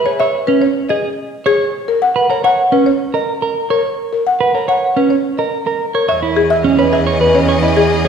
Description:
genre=classical, minimalist pattern music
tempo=107 BPM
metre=4/4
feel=straight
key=unclear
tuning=A4 = 435 Hz
part: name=clean electric guitar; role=arpeggios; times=0.0-8.1 s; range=C#4 to C#5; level=-16 LUFS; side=right 6 dB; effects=none
part: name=buzzing marimba with medium hard mallets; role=melody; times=0.1-8.1 s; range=G#4 to F#5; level=-15 LUFS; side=left 4 dB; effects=none
part: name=bright studio string section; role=sustained chords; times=6.1-8.1 s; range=G#4 to D#5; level=-21 LUFS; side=left 2 dB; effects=none
part: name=rich cello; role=bass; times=6.1-8.1 s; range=E2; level=-18 LUFS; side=right 2 dB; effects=none
room=wet recital hall reverb, RT60 1.4 s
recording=recorded in a church or concert hall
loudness=-12 LUFS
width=side -7 dB against mid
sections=0.0-6.1 A section; 6.1-8.1 B section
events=none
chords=0.0 N.C.; 6.1 Emaj7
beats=0.48 1.04 | 1.60 2.16 2.72 3.28 | 3.85 4.41 4.97 5.53 | 6.09 6.65 7.21 7.77

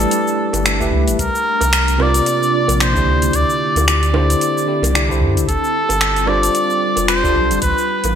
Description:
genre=sunset chillout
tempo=112 BPM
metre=4/4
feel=swing 57% on 16ths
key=unclear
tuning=A4 = 440 Hz
part: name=trumpet with cup mute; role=melody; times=0.0-8.2 s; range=A4 to D5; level=-18 LUFS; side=equal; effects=ping-pong delay
part: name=tine electric piano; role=accompaniment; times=0.0-7.6 s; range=C3 to E5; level=-21 LUFS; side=equal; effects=auto-pan, ping-pong delay
part: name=ethereal airy pad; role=sustained chords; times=0.0-8.2 s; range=C3 to G4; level=-23 LUFS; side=equal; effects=ensemble chorus, built-in reverb, phaser
part: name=warm sub bass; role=bass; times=0.0-8.2 s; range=F1 to G2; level=-19 LUFS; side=equal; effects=none
part: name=deep house drum kit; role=drums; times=0.0-8.1 s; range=finger snaps, hi-hat, shaker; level=-20 LUFS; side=left 1 dB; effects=overdrive, gated reverb
part: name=bongos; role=percussion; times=0.5-8.1 s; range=none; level=-28 LUFS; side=right 5 dB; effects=none
part: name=electronic kick drum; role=drums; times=0.8-7.7 s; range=none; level=-23 LUFS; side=equal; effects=none
room=moderate plate reverb, RT60 1.6 s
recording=bright 1980s-style digital production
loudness=-13 LUFS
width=side -8 dB against mid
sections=0.0-8.2 A section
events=none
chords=0.0 A9sus4; 1.2 C9sus4; 3.1 D9sus4; 5.5 G9sus4; 7.6 A9sus4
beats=0.12 0.66 | 1.19 1.73 2.26 2.80 | 3.33 3.87 4.41 4.94 | 5.48 6.01 6.55 7.08 | 7.62

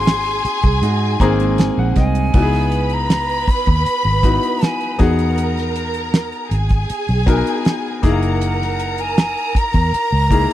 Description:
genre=lush 1970s-style soul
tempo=79 BPM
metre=4/4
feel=straight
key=C# dorian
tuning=A4 = 440 Hz
part: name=breathy hollow jazz flute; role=melody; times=0.0-10.5 s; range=F#5 to B#5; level=-22 LUFS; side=equal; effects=none
part: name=warm studio string section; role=second line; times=0.0-10.5 s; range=G#4 to B5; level=-24 LUFS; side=right 1 dB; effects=none
part: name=clear grand piano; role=accompaniment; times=0.0-10.5 s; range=A#3 to A#5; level=-22 LUFS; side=left 5 dB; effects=none
part: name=vintage muted fingered electric bass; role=bass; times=0.0-10.5 s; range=F#1 to G#2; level=-19 LUFS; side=equal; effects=none
part: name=damped 70s drum kit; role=drums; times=0.1-10.5 s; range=crash cymbal, hi-hat, kick drum, snare drum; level=-16 LUFS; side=right 1 dB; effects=none
part: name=electric guitar through a small old amp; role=riff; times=0.6-2.3 s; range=G#3 to G#4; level=-22 LUFS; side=right 9 dB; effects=none
room=little or no reverb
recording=dry, close 1970s-style studio recording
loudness=-15 LUFS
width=side -13 dB against mid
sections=0.0-2.3 A section; 2.3-10.5 B section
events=grand piano fill 0.8-2.3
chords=0.0 G#7; 2.3 C#m9; 5.0 Emaj9; 8.0 F#13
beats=0.07 0.83 1.59 | 2.34 3.10 3.86 4.62 | 5.38 6.14 6.89 7.65 | 8.41 9.17 9.93

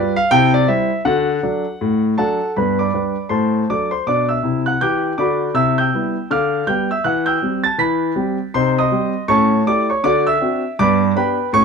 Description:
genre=jazz, stride piano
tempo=160 BPM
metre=4/4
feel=swing 60% on 8ths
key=G major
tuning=A4 = 439 Hz
part: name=warm concert grand piano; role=solo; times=0.0-11.6 s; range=G2 to B6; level=-15 LUFS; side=equal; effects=none
room=moderate small room reverb, RT60 0.5 s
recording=none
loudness=-15 LUFS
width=side -5 dB against mid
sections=0.0-2.6 A section; 2.6-11.6 B section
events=none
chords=0.3 C; 1.1 D; 2.6 G; 3.3 D7/A; 4.1 G/B; 5.6 Cmaj7; 6.3 G7/D; 7.1 C/E; 8.5 Cm; 9.3 A7; 10.0 D7; 10.8 G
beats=0.32 0.69 | 1.06 1.44 1.81 2.19 | 2.56 2.94 3.31 3.69 | 4.06 4.44 4.81 5.18 | 5.56 5.93 6.31 6.68 | 7.06 7.43 7.80 8.18 | 8.55 8.92 9.30 9.67 | 10.04 10.41 10.79 11.16 | 11.53

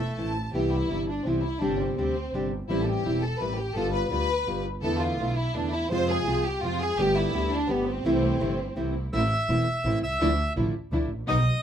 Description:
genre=tango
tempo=168 BPM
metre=3/4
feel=rubato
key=C major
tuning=A4 = 440 Hz
part: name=bandoneon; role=melody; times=0.0-0.3, 9.1-11.6 s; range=A3 to E6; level=-28 LUFS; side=equal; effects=none
part: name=warm symphonic violin section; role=second line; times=0.0-8.9 s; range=B3 to A5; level=-29 LUFS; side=equal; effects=none
part: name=warm studio string section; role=stabs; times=0.0-0.5, 4.8-11.4 s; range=F3 to G4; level=-37 LUFS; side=left 1 dB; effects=none
part: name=clear double bass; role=bass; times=0.0-11.4 s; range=E1 to F2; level=-29 LUFS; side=equal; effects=none
part: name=nylon-string guitar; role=accompaniment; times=0.2-11.4 s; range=B2 to G4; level=-28 LUFS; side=equal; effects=none
room=light reverb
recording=close, detailed microphones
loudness=-24 LUFS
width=side -9 dB against mid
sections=0.5-9.1 A section; 9.1-11.6 B section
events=violin section solo 0.5-9.1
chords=0.0 Am; 0.5 Cmaj7; 1.6 Gsus4; 2.7 Am7; 3.8 G7; 4.8 E7sus4; 5.9 Fm; 7.0 Gadd9; 8.0 C6; 9.1 Am; 10.2 Dmadd9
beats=0.18 | 0.54 0.90 1.26 | 1.62 1.98 2.33 | 2.69 3.05 3.40 | 3.76 4.11 4.47 | 4.83 5.20 5.55 | 5.91 6.27 6.63 | 6.98 7.34 7.69 | 8.05 8.40 8.77 | 9.13 9.49 9.85 | 10.21 10.57 10.92 | 11.28

